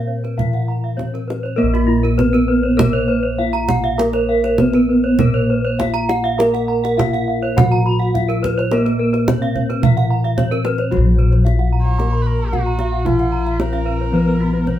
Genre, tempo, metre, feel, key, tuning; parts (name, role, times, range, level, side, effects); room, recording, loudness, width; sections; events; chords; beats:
Balinese gamelan; 100-112 BPM; 4/4; straight; Bb pelog; A4 = 441 Hz
gamelan-type bronze metallophone; melody; 0.0-14.8 s; Gb3-40c to Bb4; -21 LUFS; right 1 dB
gamelan-type bronze metallophone; accompaniment; 0.0-14.8 s; F3-45c to Cb4; -27 LUFS; left 1 dB
gamelan-type bronze metallophone; arpeggios; 0.0-14.5 s; Gb4-40c to C6+50c; -25 LUFS; right 5 dB
gamelan-type bossed gongs; bass; 0.0-14.8 s; Bb1 to Bb4; -19 LUFS; left 1 dB
gamelan-type bronze metallophone; arpeggios; 0.1-14.8 s; F4-45c to Cb6; -24 LUFS; left 4 dB
kendang; percussion; 0.2-14.8 s; -20 LUFS; right 3 dB
clear erhu; second line; 11.8-14.8 s; F4-44c to C5+47c; -28 LUFS; right 3 dB
moderate studio reverb, RT60 0.5 s; band playing live in one room; -14 LUFS; side -11 dB against mid
0.0-10.9 A section; 10.9-14.8 B section
0.39 0.98 | 1.58 2.19 2.79 3.38 | 3.98 4.58 5.18 5.79 | 6.38 6.98 7.57 8.15 | 8.72 9.28 9.83 10.38 | 10.92 11.45 11.99 12.53 | 13.06 13.60 14.13 14.67